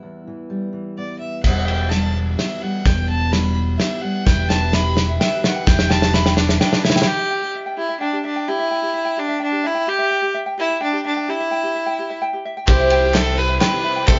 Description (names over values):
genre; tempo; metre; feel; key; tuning
indie folk with a building arrangement; 128 BPM; 3/4; straight; unclear; A4 = 440 Hz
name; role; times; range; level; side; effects
fingerpicked steel-string acoustic guitar; accompaniment; 0.0-5.7 s; E2 to G4; -29 LUFS; equal; none
rich fiddle; melody; 1.0-14.2 s; D4 to B5; -24 LUFS; equal; none
fingered electric bass; bass; 1.4-6.6, 12.7-14.2 s; E1 to C2; -23 LUFS; equal; none
cloth-damped thuddy drum kit; drums; 1.4-7.1, 12.7-14.2 s; crash cymbal, kick drum, ride cymbal, snare drum; -21 LUFS; equal; none
picked twelve-string acoustic guitar; accompaniment; 4.3-7.1, 12.7-14.2 s; C3 to C5; -27 LUFS; equal; none
ukulele; arpeggios; 4.3-14.2 s; G4 to G5; -29 LUFS; equal; none
tambourine; percussion; 4.3-6.9, 12.7-14.2 s; none; -39 LUFS; equal; none
dark upright piano; accompaniment; 12.7-14.2 s; C2 to E5; -33 LUFS; equal; none
dark studio string section; sustained chords; 12.7-14.2 s; C3 to G4; -35 LUFS; equal; none
group handclap; percussion; 12.7-14.2 s; none; -32 LUFS; equal; none
room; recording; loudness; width
moderate studio reverb, RT60 0.9 s; band playing live in one room, nothing above 7.5 kHz; -19 LUFS; mono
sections
0.0-1.4 A section; 1.4-7.1 B section; 7.1-14.2 C section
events
build-up 1.4-7.1; drum fill 1.4-7.1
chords
0.0 Em; 12.7 C